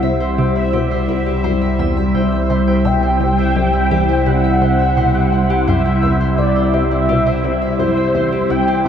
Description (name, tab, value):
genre	ambient, sequencer-driven space music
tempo	85 BPM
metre	4/4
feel	straight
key	unclear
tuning	A4 = 440 Hz
part	mellow horn-like synth lead	melody	0.0-8.9 s	C5 to G5	-19 LUFS	equal	phaser, ensemble chorus, tape echo
part	phased analog pad	sustained chords	0.0-8.9 s	C3 to C5	-17 LUFS	equal	phaser, chorus
part	concert harp	arpeggios	0.0-8.9 s	E4 to E6	-24 LUFS	left 5 dB	auto-pan, tape echo
part	resonant blip pluck	riff	0.0-8.9 s	C2 to C3	-23 LUFS	equal	phaser, tape echo
part	round analog bass	bass	0.0-8.9 s	C2	-21 LUFS	equal	tube saturation
part	bubbling stepped-filter texture	texture	0.0-8.9 s	E5	-29 LUFS	equal	chorus, built-in reverb
room	wet huge ambient reverb, RT60 8.0 s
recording	none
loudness	-13 LUFS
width	side -8 dB against mid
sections	0.0-8.9 A section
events	none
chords	0.0 C